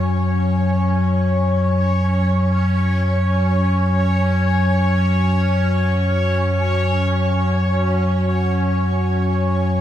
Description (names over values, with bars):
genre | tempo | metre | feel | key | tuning
dark ambient drone | free time | none | none | unclear | A4 = 438 Hz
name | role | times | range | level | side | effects
deep rumbling drone | drone | 0.0-9.8 s | F#2 to F#3 | -17 LUFS | equal | built-in reverb
bubbling stepped-filter texture | texture | 0.0-9.8 s | C#4 to C#5 | -22 LUFS | left 1 dB | chorus, built-in reverb, shimmer reverb
room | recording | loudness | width
wet huge ambient reverb, RT60 7.4 s | none | -16 LUFS | side -11 dB against mid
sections
0.0-9.8 A section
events
none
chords
0.0 F#5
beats
free time